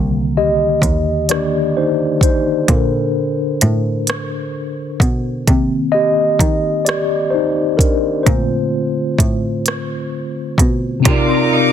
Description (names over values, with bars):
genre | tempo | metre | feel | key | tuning
slow six-eight R&B | 43 BPM (dotted quarters) | 6/8 | straight | C dorian | A4 = 438 Hz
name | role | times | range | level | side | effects
mellow tine electric piano | accompaniment | 0.0-11.7 s | C3 to Eb5 | -16 LUFS | left 2 dB | medium stereo tremolo
rich cello | bass | 0.0-11.7 s | C2 to Eb3 | -20 LUFS | right 1 dB | none
smooth R&B drum kit | drums | 0.8-11.3 s | hi-hat, kick drum, rim click | -17 LUFS | right 1 dB | soft clipping on snare
electric guitar at the edge of break-up | second line | 11.0-11.7 s | C3 to F4 | -19 LUFS | right 5 dB | ensemble chorus
dark chamber string section | sustained chords | 11.1-11.7 s | Eb4 to D6 | -18 LUFS | left 1 dB | none
room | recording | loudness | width
light reverb | dense, heavily limited modern master | -14 LUFS | side -9 dB against mid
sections
0.0-11.1 A section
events
tine electric piano solo 0.0-11.1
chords
0.0 Cm9; 2.7 Bbmaj9; 5.5 Cm9; 8.3 Bbmaj9; 11.1 Cm11